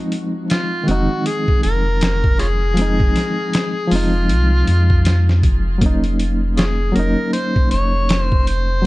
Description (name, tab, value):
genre	trip hop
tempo	79 BPM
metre	4/4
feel	swing 59% on 16ths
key	F phrygian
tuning	A4 = 440 Hz
part	reed electric piano	accompaniment	0.0-8.9 s	Eb3 to Eb4	-21 LUFS	equal	tremolo, tape echo
part	boom bap sampler-style drum kit	drums	0.1-8.7 s	hi-hat, kick drum, snare drum	-18 LUFS	equal	none
part	overdriven harmonica	melody	0.5-8.9 s	Db4 to Db5	-23 LUFS	left 1 dB	dub echo
part	warm sub bass	bass	0.9-8.9 s	F1 to F2	-17 LUFS	equal	none
room	digital ambience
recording	dark, warm production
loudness	-14 LUFS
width	side -19 dB against mid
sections	0.0-8.9 A section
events	none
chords	0.0 Fm7; 5.8 Ebm7/F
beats	0.50 1.26 2.02 | 2.78 3.54 4.30 5.05 | 5.82 6.57 7.33 8.09 | 8.85